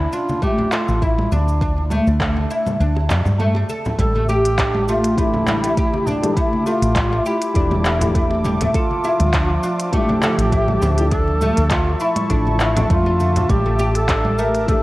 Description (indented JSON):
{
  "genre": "organic downtempo",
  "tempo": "101 BPM",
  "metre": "4/4",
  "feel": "swing 54% on 16ths",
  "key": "unclear",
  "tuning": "A4 = 441 Hz",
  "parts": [
    { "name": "mellow duduk", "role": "melody", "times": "0.0-14.8 s", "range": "D4 to Bb4", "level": "-23 LUFS", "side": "equal", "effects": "digital delay" },
    { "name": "woody fretless electric bass", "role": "bass", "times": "0.0-14.8 s", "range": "E1 to G2", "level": "-20 LUFS", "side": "equal", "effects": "sidechain pumping" },
    { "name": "oud", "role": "arpeggios", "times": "0.1-14.8 s", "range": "G3 to A4", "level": "-22 LUFS", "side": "equal", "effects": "digital delay" },
    { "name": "organic electronic drum kit", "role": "drums", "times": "0.1-14.8 s", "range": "cabasa, congas, handclaps, hi-hat", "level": "-25 LUFS", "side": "equal", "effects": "overdrive" },
    { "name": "congas and bongos", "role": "percussion", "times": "0.3-13.9 s", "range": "none", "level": "-27 LUFS", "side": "equal", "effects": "none" },
    { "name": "electronic kick drum", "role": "drums", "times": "0.4-14.8 s", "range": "none", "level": "-21 LUFS", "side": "equal", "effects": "overdrive" },
    { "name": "warm analog pad", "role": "sustained chords", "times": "4.0-14.8 s", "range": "F3 to D6", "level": "-27 LUFS", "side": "right 1 dB", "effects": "chorus, sidechain pumping" },
    { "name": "felt-muted upright piano", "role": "accompaniment", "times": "5.2-14.8 s", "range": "E3 to E5", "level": "-27 LUFS", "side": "left 2 dB", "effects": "sidechain pumping" }
  ],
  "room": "moderate lush hall reverb, RT60 2.6 s",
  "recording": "worn, warbling old tape, cassette tape, warbly pitch drift",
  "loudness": "-15 LUFS",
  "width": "side -18 dB against mid",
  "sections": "0.0-4.0 A section; 4.0-14.8 B section",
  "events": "kick drops out 2.8-4.0",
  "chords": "0.0 D5; 4.0 A7sus4; 8.7 Dmadd9; 13.5 A7sus4"
}